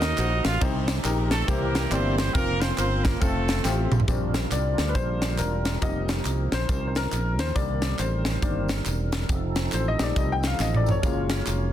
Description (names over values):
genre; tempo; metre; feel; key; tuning
uptempo gospel; 138 BPM; 4/4; swing 61% on 8ths; Bb major; A4 = 443 Hz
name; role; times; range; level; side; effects
warm horn section; melody; 0.0-4.0 s; A3 to F5; -28 LUFS; right 2 dB; none
clear grand piano; accompaniment; 0.0-11.7 s; C3 to G5; -30 LUFS; left 6 dB; none
tonewheel organ; sustained chords; 0.0-11.7 s; Eb3 to Bb4; -33 LUFS; right 4 dB; slow rotary speaker, overdrive, chorus vibrato
fingered electric bass; bass; 0.0-11.7 s; E1 to Eb2; -27 LUFS; equal; none
crisp fusion drum kit; drums; 0.0-11.6 s; hi-hat, kick drum, ride cymbal, snare drum, toms; -27 LUFS; equal; none
tambourine and handclaps; percussion; 0.0-11.6 s; none; -39 LUFS; right 1 dB; none
room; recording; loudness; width
light reverb, small room ambience; dense, heavily limited modern master; -22 LUFS; side -11 dB against mid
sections
0.0-4.1 A section; 4.1-11.7 B section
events
drum fill 3.6-4.1, 10.6-11.0; grand piano solo 4.1-11.7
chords
0.0 Ebm; 0.6 Cm; 1.5 C7; 2.4 Fsus4; 3.2 F; 4.1 Bb6; 5.8 F7sus4; 7.6 Cm7; 9.3 F7; 11.0 Gbmaj7